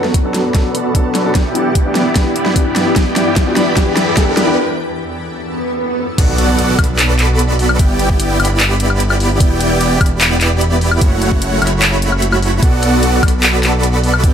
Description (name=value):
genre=future bass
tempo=149 BPM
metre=4/4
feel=half-time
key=B minor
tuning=A4 = 441 Hz
part: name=warm baby grand piano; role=accompaniment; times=0.0-4.6 s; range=E3 to A4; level=-20 LUFS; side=left 2 dB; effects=sidechain pumping, dub echo
part: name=shimmering ambient pad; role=sustained chords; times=0.0-6.2 s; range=E2 to A4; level=-26 LUFS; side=left 1 dB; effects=chorus, built-in reverb, sidechain pumping
part: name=supersaw chords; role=riff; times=0.0-14.3 s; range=A3 to B5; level=-16 LUFS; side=right 1 dB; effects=lush chorus, sidechain pumping, low-pass filter, dub echo
part: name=dubstep drum kit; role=drums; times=0.0-14.3 s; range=crash cymbal, handclaps, hi-hat, snare drum, woodblock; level=-17 LUFS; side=left 1 dB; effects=studio reverb
part: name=riser, swell and impact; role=sound effects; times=0.0-7.8 s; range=none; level=-22 LUFS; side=equal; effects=none
part: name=electronic kick drum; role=drums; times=0.1-14.3 s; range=none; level=-13 LUFS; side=equal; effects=studio reverb
part: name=fat analog bass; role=bass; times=6.2-14.3 s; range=E1 to B1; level=-16 LUFS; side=equal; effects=sidechain pumping
room=light reverb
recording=none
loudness=-11 LUFS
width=side -8 dB against mid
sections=0.0-6.2 A section; 6.2-14.3 B section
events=build-up 0.0-6.2; drum fill 0.0-4.6; filter sweep on supersaw synth 0.0-6.2; break 4.6-6.2; swell 5.5-6.2; drop 6.2-14.3; impact 6.2-7.8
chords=0.0 Bm7; 1.4 G6; 3.0 Em7; 4.6 F#m7; 6.2 Bm7; 7.8 G6; 9.4 Em7; 11.0 F#m7; 12.6 Bm7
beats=0.14 0.55 0.95 | 1.35 1.75 2.16 2.56 | 2.96 3.36 3.77 4.17 | 4.57 4.97 5.38 5.78 | 6.18 6.59 6.99 7.39 | 7.79 8.20 8.60 9.00 | 9.40 9.81 10.21 10.61 | 11.02 11.42 11.82 12.22 | 12.63 13.03 13.43 13.83 | 14.24